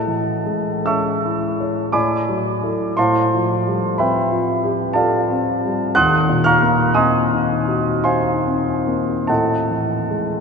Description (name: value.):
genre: classical, impressionist solo piano.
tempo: 46-62 BPM.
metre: 3/4.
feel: rubato.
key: unclear.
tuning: A4 = 444 Hz.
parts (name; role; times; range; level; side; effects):
warm concert grand piano; solo; 0.0-10.4 s; D#2 to F#6; -16 LUFS; equal; none.
room: wet cathedral reverb, RT60 5.5 s.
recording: none.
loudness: -16 LUFS.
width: side -5 dB against mid.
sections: 0.0-10.4 A section.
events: none.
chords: 0.0 Amaj7; 1.9 E11/A; 3.0 Fadd9/A; 6.0 D#m6; 9.3 Amaj7(no3).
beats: 0.88 1.94 | 2.96 3.98 4.96 | 5.95 6.95 8.04 | 9.28.